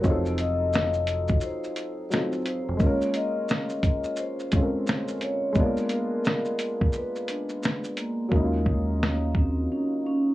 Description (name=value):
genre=lo-fi hip hop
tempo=87 BPM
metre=4/4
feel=swing 63% on 16ths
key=Eb dorian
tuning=A4 = 440 Hz
part: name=vibraphone with soft mallets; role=melody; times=0.0-10.3 s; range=Ab3 to Eb5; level=-29 LUFS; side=equal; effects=tape echo
part: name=dark upright piano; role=accompaniment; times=0.0-10.3 s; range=Db3 to Bb4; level=-29 LUFS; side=left 1 dB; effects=none
part: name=deep dub fingered electric bass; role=bass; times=0.0-2.8, 8.3-9.7 s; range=F1 to Eb2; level=-28 LUFS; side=right 1 dB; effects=none
part: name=lo-fi sampler-style drum kit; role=drums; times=0.0-9.6 s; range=hi-hat, kick drum, shaker, snare drum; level=-25 LUFS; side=equal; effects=none
room=moderate small room reverb, RT60 0.6 s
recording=cassette tape, small room ambience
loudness=-24 LUFS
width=side -16 dB against mid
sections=0.0-8.3 A section; 8.3-10.3 B section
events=hi-hats muted 8.3-10.3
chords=0.0 F7b9; 2.8 Bbm9; 5.6 Bb7b9; 8.3 Ebm9